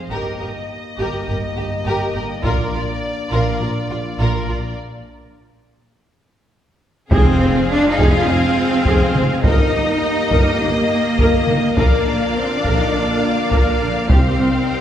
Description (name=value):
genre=cinematic, epic orchestral film score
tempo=103 BPM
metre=4/4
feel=straight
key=F dorian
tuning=A4 = 440 Hz
part: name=rich symphonic violin section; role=melody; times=0.0-14.8 s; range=D5 to F5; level=-27 LUFS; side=left 2 dB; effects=none
part: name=mellow French horn section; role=sustained chords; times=0.0-14.8 s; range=Bb3 to F4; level=-25 LUFS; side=left 2 dB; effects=none
part: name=warm symphonic violin section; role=second line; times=0.1-14.8 s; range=F4 to Eb5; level=-26 LUFS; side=left 2 dB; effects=none
part: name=warm symphonic viola section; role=accompaniment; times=0.1-14.5 s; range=C4 to Bb4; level=-24 LUFS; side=left 1 dB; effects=none
part: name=warm symphonic cello section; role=bass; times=0.1-14.8 s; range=G2 to F4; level=-22 LUFS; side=right 1 dB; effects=none
part: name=warm symphonic double bass section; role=bass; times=0.1-14.5 s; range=G1 to F2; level=-25 LUFS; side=right 2 dB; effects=none
part: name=taiko ensemble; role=drums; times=2.4-3.6, 7.1-14.6 s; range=none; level=-18 LUFS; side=equal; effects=none
part: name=clear trombone section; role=sustained chords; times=7.1-14.8 s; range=D3 to Bb3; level=-28 LUFS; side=right 2 dB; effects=none
part: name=warm symphonic string section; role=sustained chords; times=7.1-14.8 s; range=Bb3 to G5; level=-26 LUFS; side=equal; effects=none
part: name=mellow tuba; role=bass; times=7.1-14.5 s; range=F1 to C2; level=-25 LUFS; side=right 1 dB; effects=none
part: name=timpani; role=percussion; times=7.1-7.9 s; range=F2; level=-24 LUFS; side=equal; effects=none
part: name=impact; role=sound effects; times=7.1-9.4 s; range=none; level=-31 LUFS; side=equal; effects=none
room=wet scoring stage reverb, RT60 1.8 s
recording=recorded in a church or concert hall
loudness=-15 LUFS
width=side -10 dB against mid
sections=0.0-7.1 A section; 7.1-14.8 B section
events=break 4.8-7.1; impact 7.1-9.4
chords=0.1 Eb/G; 2.4 Bb; 4.8 N.C.; 7.1 Fm; 9.4 Eb/G; 11.8 Bb; 14.1 Cm